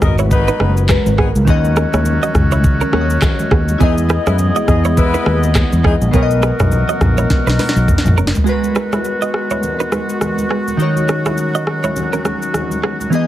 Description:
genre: afrobeats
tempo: 103 BPM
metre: 4/4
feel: swing 58% on 16ths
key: unclear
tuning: A4 = 438 Hz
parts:
  - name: mellow horn section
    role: second line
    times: 0.0-5.9 s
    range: D#3 to D#5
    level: -23 LUFS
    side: left 4 dB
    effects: ping-pong delay
  - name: glassy digital keys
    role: accompaniment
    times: 0.0-13.3 s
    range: B2 to D#5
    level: -20 LUFS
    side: equal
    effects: chorus
  - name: warm woodwind section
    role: sustained chords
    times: 0.0-13.3 s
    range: D#3 to D#5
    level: -23 LUFS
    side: equal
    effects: none
  - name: fingered electric bass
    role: bass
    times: 0.0-8.3 s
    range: F#1 to F#2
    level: -15 LUFS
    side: equal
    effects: none
  - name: afro-pop drum kit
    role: drums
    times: 0.0-13.3 s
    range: handclaps, hi-hat, kick drum, rim click, shaker, snare drum, toms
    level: -16 LUFS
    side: equal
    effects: none
  - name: direct-recorded clean electric guitar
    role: riff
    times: 0.2-13.0 s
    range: B3 to D#5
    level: -22 LUFS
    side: right 6 dB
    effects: wide subtle chorus, ping-pong delay
  - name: congas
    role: percussion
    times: 0.2-13.1 s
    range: none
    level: -24 LUFS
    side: equal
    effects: none
room: little or no reverb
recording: heavily compressed radio sound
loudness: -12 LUFS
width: side -13 dB against mid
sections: 0.0-8.5 A section; 8.5-13.3 B section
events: drum fill 7.3-8.5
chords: 0.0 G#m9; 1.5 D#m7; 3.8 Emaj7; 6.1 Bmaj7; 8.5 D#m7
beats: 0.31 0.89 | 1.48 2.06 2.64 3.22 | 3.81 4.39 4.97 5.55 | 6.14 6.72 7.30 7.88 | 8.47 9.05 9.63 10.21 | 10.80 11.38 11.96 12.54 | 13.13

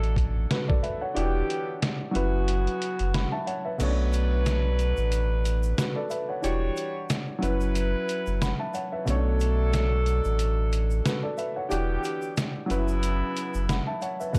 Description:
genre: hip hop, boom-bap hip-hop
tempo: 91 BPM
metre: 4/4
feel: swing 56% on 16ths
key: B minor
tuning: A4 = 440 Hz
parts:
  - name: dark grand piano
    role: accompaniment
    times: 0.0-14.4 s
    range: B2 to B5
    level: -33 LUFS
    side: equal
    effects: cassette tape, high-pass filter, low-pass filter
  - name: edgy saxophone section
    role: stabs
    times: 0.0-14.4 s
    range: C#3 to C#5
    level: -35 LUFS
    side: equal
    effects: high-pass filter, low-pass filter, analog delay
  - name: warm sub bass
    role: bass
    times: 0.0-14.4 s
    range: E1 to B1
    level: -28 LUFS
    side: equal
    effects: none
  - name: trip hop sampler-style drum kit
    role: drums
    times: 0.0-14.4 s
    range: crash cymbal, hi-hat, kick drum, snare drum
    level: -32 LUFS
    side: equal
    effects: none
  - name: tube shaker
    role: percussion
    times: 3.8-14.4 s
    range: none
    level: -51 LUFS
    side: equal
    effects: none
room: small room ambience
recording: dark, warm production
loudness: -27 LUFS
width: mono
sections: 0.0-3.8 A section; 3.8-14.4 B section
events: kick muted 1.2-3.8, 3.8-14.3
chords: 0.0 Bm9; 1.2 Em9; 2.1 F#7sus4; 3.8 Bm9; 6.4 Em9; 7.4 F#7sus4; 9.1 Bm9; 11.7 Em9; 12.7 F#7sus4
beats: 0.50 | 1.16 1.82 2.48 3.14 | 3.80 4.46 5.12 5.78 | 6.44 7.09 7.75 8.41 | 9.07 9.73 10.39 11.05 | 11.71 12.37 13.03 13.69 | 14.35

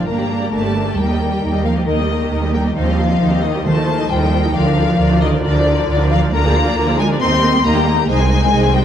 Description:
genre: quick classical-period movement for symphony orchestra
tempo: 135 BPM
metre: 4/4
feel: rubato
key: Bb major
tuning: A4 = 439 Hz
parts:
  - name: rich studio violin section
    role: melody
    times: 0.0-8.8 s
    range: D5 to C6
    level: -21 LUFS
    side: left 5 dB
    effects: none
  - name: clear symphonic violin section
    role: second line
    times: 0.0-8.8 s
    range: Eb4 to G5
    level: -24 LUFS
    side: left 4 dB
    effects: none
  - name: warm studio viola section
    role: accompaniment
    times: 0.0-8.8 s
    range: D3 to F4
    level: -21 LUFS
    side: right 1 dB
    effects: none
  - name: rich symphonic cello section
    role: bass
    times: 0.0-8.8 s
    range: D3 to C4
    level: -20 LUFS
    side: right 1 dB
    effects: none
  - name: rich studio double bass section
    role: bass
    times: 0.1-8.8 s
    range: G1 to Eb2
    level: -18 LUFS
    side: right 2 dB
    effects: none
  - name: timpani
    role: percussion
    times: 1.0-4.3 s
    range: Eb3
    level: -25 LUFS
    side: right 1 dB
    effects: none
room: moderate scoring stage reverb, RT60 1.9 s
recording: dark, warm production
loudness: -13 LUFS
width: side -9 dB against mid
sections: 0.0-8.8 A section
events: none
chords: 0.1 Gm; 1.0 Eb; 2.8 Cm/Eb; 3.7 F7/Eb; 4.6 Bb/D; 6.3 Bb7/D; 7.2 Eb; 8.1 Ab/C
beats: 0.07 0.52 | 0.97 1.42 1.88 2.32 | 2.77 3.21 3.66 4.11 | 4.55 5.00 5.44 5.88 | 6.34 6.78 7.22 7.66 | 8.10 8.54

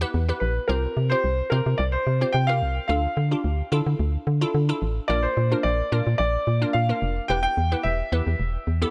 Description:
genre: pop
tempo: 109 BPM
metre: 4/4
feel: straight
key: D minor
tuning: A4 = 438 Hz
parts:
  - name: glassy wavetable pluck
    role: accompaniment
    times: 0.0-8.9 s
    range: Bb3 to C5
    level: -32 LUFS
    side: equal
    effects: chorus
  - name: organ-like FM bass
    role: bass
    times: 0.0-8.9 s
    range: E1 to D3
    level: -25 LUFS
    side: equal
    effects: none
  - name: warm grand piano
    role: melody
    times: 0.4-8.9 s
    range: Bb4 to G5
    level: -28 LUFS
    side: equal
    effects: tape echo
room: light reverb, small room reverb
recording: none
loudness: -24 LUFS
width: mono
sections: 0.0-8.9 A section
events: none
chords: 0.0 Em; 0.7 Csus4; 2.9 Dmadd9; 5.1 Bb; 7.3 Em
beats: 0.14 | 0.69 1.24 1.79 2.34 | 2.89 3.44 4.00 4.54 | 5.10 5.65 6.20 6.75 | 7.30 7.85 8.40

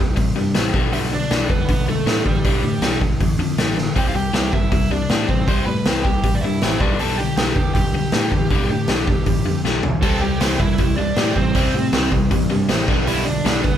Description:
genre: punk rock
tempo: 158 BPM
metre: 4/4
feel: straight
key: C major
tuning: A4 = 441 Hz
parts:
  - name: overdriven electric guitar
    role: riff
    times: 0.0-13.8 s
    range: G2 to C4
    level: -22 LUFS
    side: left 5 dB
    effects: none
  - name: growling picked electric bass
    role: bass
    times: 0.0-13.8 s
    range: F1 to A2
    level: -24 LUFS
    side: right 1 dB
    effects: overdrive
  - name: raw garage drum kit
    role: drums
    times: 0.2-13.7 s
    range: crash cymbal, hi-hat, kick drum, snare drum, toms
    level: -20 LUFS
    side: right 1 dB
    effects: none
  - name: bluesy overdriven lead guitar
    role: melody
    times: 0.9-13.8 s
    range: G3 to C6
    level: -25 LUFS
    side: right 2 dB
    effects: distortion
  - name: distorted electric guitar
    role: riff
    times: 10.0-13.8 s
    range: G2 to C4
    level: -24 LUFS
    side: right 6 dB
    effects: overdrive
room: light reverb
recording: band playing live in one room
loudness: -16 LUFS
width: side -10 dB against mid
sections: 0.0-13.8 A section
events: drum fill 3.8, 9.6-10.0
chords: 0.0 C5; 0.7 G; 4.0 C; 6.8 G; 10.0 C; 12.9 G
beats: 0.17 0.55 | 0.93 1.31 1.69 2.06 | 2.44 2.82 3.20 3.58 | 3.96 4.33 4.71 5.09 | 5.47 5.85 6.23 6.61 | 6.99 7.37 7.75 8.13 | 8.51 8.89 9.27 9.65 | 10.03 10.41 10.79 11.17 | 11.55 11.93 12.31 12.69 | 13.07 13.45

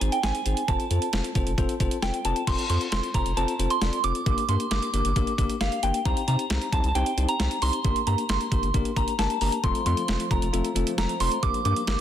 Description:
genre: synth-pop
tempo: 134 BPM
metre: 4/4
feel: straight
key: unclear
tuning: A4 = 440 Hz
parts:
  - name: soft synth bell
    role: melody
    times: 0.0-12.0 s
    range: F5 to D6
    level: -28 LUFS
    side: right 2 dB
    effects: chorus, phaser, digital delay
  - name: bell-like tine electric piano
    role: accompaniment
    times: 0.0-12.0 s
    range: A3 to D5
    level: -30 LUFS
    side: left 6 dB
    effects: none
  - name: round analog bass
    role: bass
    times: 0.0-12.0 s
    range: F1 to C3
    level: -27 LUFS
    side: equal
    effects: none
  - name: clean 12-bit digital drum machine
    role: drums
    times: 0.0-12.0 s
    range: crash cymbal, hi-hat, kick drum, snare drum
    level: -28 LUFS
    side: right 1 dB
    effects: none
  - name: concert harp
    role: arpeggios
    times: 9.6-12.0 s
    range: F3 to A4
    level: -36 LUFS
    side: right 5 dB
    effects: digital delay
room: light reverb, digital ambience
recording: dense, heavily limited modern master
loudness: -23 LUFS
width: side -10 dB against mid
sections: 0.0-2.5 A section; 2.5-12.0 B section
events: none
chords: 0.0 Ab; 0.7 F; 4.3 Gm; 6.1 Cm; 7.8 Gm; 9.6 F; 11.4 Gm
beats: 0.23 | 0.68 1.13 1.58 2.02 | 2.47 2.92 3.37 3.82 | 4.26 4.71 5.16 5.61 | 6.05 6.50 6.95 7.40 | 7.85 8.29 8.74 9.19 | 9.64 10.09 10.53 10.98 | 11.43 11.88

